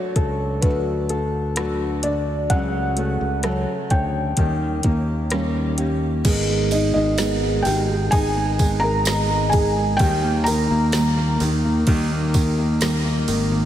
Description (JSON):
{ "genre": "pop ballad", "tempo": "64 BPM", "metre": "4/4", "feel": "straight", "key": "F# minor, G# harmonic minor from 6.3 s", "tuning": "A4 = 436 Hz", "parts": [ { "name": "felt-muted upright piano", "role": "melody", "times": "0.0-12.3 s", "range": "D#4 to A#5", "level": "-24 LUFS", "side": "equal", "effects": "slapback echo" }, { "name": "warm concert grand piano", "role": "accompaniment", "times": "0.0-13.7 s", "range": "C#3 to C#5", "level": "-24 LUFS", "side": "left 1 dB", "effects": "none" }, { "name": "picked steel-string acoustic guitar", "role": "arpeggios", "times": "0.0-13.7 s", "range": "G#2 to A#4", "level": "-28 LUFS", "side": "right 2 dB", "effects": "ping-pong delay" }, { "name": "modern bright fingered electric bass", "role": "bass", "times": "0.2-13.7 s", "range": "G#1 to D#2", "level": "-24 LUFS", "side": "equal", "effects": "none" }, { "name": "smooth R&B drum kit", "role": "drums", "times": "0.2-13.5 s", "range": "crash cymbal, hi-hat, kick drum, ride cymbal, rim click, snare drum", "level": "-24 LUFS", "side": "equal", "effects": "none" }, { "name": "tambourine", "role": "percussion", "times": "6.3-13.5 s", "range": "none", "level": "-37 LUFS", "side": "right 8 dB", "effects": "none" } ], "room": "moderate lush hall reverb, RT60 3.2 s", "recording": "big arena sound", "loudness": "-18 LUFS", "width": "side -11 dB against mid", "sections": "0.0-6.3 A section; 6.3-13.7 B section", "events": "none", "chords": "0.0 F#m/C#; 4.4 D#7; 6.3 G#madd9; 10.0 D#", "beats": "0.63 1.56 | 2.50 3.44 4.38 5.32 | 6.25 7.19 8.13 9.06 | 10.00 10.94 11.88 12.81" }